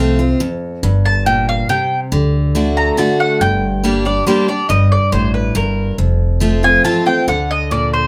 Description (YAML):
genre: bluegrass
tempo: 140 BPM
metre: 3/4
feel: straight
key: G minor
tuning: A4 = 435 Hz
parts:
  - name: mandolin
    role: melody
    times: 0.0-8.1 s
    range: Bb4 to Bb5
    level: -19 LUFS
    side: equal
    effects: none
  - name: picked steel-string acoustic guitar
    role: accompaniment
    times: 0.0-8.1 s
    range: F2 to G4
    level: -18 LUFS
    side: equal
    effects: none
  - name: upright bass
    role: bass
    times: 0.0-8.1 s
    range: F1 to D2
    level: -21 LUFS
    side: equal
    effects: none
room: wet studio ambience, RT60 0.5 s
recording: heard from further back in the room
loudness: -15 LUFS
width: mono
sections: 0.0-2.1 A section; 2.1-8.1 B section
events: mandolin solo 2.1-8.1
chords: 0.0 F; 0.8 Gm; 2.1 D; 3.4 Gm; 4.7 Gmadd9; 6.0 F; 7.3 D5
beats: 0.40 | 0.83 1.26 1.69 | 2.12 2.55 2.98 | 3.41 3.84 4.27 | 4.70 5.13 5.56 | 5.99 6.42 6.85 | 7.28 7.71